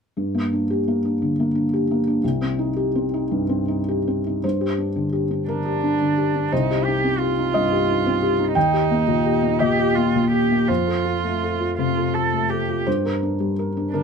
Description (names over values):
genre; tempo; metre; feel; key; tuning
neoclassical piano and strings; 52-60 BPM (dotted quarters); 6/8; rubato; G minor; A4 = 442 Hz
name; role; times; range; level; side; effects
felt-muted upright piano; accompaniment; 0.2-14.0 s; C2 to G5; -20 LUFS; left 1 dB; none
dark cello; second line; 5.5-14.0 s; D4 to A4; -23 LUFS; right 8 dB; none
room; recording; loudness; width
light reverb; none; -19 LUFS; side -6 dB against mid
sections
0.2-4.4 A section; 4.4-14.0 B section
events
none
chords
0.2 Gm; 2.2 Cm; 4.4 Gm; 6.5 Cm; 8.6 Eb; 10.7 F; 12.9 Gm